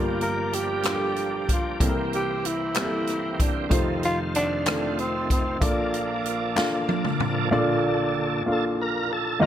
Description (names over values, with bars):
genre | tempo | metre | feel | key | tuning
slow gospel | 63 BPM (dotted quarters) | 6/8 | straight | Bb major | A4 = 440 Hz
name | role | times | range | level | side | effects
warm upright piano | accompaniment | 0.0-9.5 s | F1 to F5 | -26 LUFS | left 1 dB | none
bright tonewheel organ | sustained chords | 0.0-9.5 s | Bb2 to Bb4 | -30 LUFS | right 3 dB | slow rotary speaker, overdrive, chorus vibrato
growling tenor saxophone | melody | 0.2-7.2 s | Bb3 to Bb4 | -28 LUFS | equal | none
swinging big-band drum kit | drums | 0.2-7.3 s | hi-hat, kick drum, rim click, snare drum, toms | -26 LUFS | equal | none
group handclap | percussion | 0.9-6.9 s | none | -32 LUFS | left 5 dB | none
room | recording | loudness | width
light reverb, small room reverb | none | -22 LUFS | side -10 dB against mid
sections
0.0-7.5 A section; 7.5-9.5 B section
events
drum fill 6.6-7.5; tonewheel organ solo 7.5-9.5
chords
0.0 Gm7; 1.8 C7; 3.7 F7; 5.6 Bbmaj7